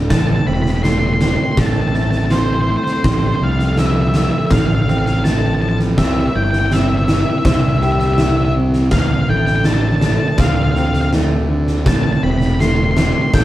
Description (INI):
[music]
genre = post-rock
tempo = 82 BPM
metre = 4/4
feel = straight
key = D minor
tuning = A4 = 438 Hz
[part]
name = dark analog pad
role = sustained chords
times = 0.4-13.4 s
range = F3 to G5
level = -30 LUFS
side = right 1 dB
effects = none
[part]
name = electric guitar through a small old amp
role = arpeggios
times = 0.0-13.4 s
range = D2 to C5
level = -21 LUFS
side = equal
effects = none
[part]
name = fuzz fingered electric bass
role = bass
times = 0.0-13.4 s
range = D1 to D2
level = -18 LUFS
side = equal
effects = overdrive
[part]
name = octave-fuzz lead guitar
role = melody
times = 0.1-13.4 s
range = C5 to C6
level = -22 LUFS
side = left 1 dB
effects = distortion
[part]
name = huge arena drum kit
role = drums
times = 0.1-13.4 s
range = kick drum, snare drum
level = -17 LUFS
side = equal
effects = none
[sound]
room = moderate stone room reverb, RT60 1.2 s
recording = band playing live in one room, vinyl crackle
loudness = -13 LUFS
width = side -14 dB against mid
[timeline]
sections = 0.0-13.4 A section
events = none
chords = 0.1 Am7; 3.0 Fmaj7/A; 6.0 C; 8.9 Dm7; 11.9 Am7